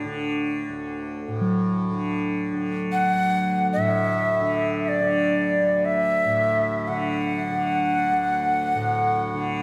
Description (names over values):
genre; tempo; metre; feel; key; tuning
world meditative, free-time meditation music; free time; none; none; D major pentatonic; A4 = 440 Hz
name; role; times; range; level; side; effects
tanpura; drone; 0.0-9.6 s; D2 to D3; -29 LUFS; equal; none
bronze singing bowl; texture; 1.4-9.6 s; F#3; -31 LUFS; equal; none
breathy Native American-style cedar flute; melody; 2.9-9.6 s; D5 to F#5; -24 LUFS; equal; tape echo
room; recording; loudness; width
wet plate reverb, RT60 3.4 s; dreamy mix soaked in reverb; -23 LUFS; mono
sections
0.0-9.6 A section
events
none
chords
none